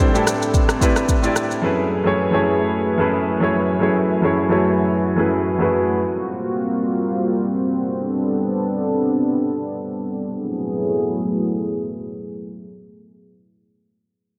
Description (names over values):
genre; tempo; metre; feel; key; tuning
amapiano; 110 BPM; 4/4; swing 55% on 16ths; F# minor; A4 = 440 Hz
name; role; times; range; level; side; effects
warm concert grand piano; accompaniment; 0.0-6.0 s; F#2 to D5; -21 LUFS; equal; low-pass filter
warm analog pad; sustained chords; 0.0-13.4 s; F#3 to B4; -24 LUFS; equal; chorus, sidechain pumping, low-pass filter
afro-pop drum kit; drums; 0.0-1.6 s; kick drum, rim click, shaker; -21 LUFS; equal; none
room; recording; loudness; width
wet lush hall reverb, RT60 1.9 s, small room ambience; dreamy mix soaked in reverb; -20 LUFS; mono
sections
0.0-10.4 A section; 10.4-14.4 B section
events
filter sweep 0.0-10.4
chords
0.0 Am11; 1.6 F#m11; 6.0 Gm7; 7.9 Am11; 10.4 F#m11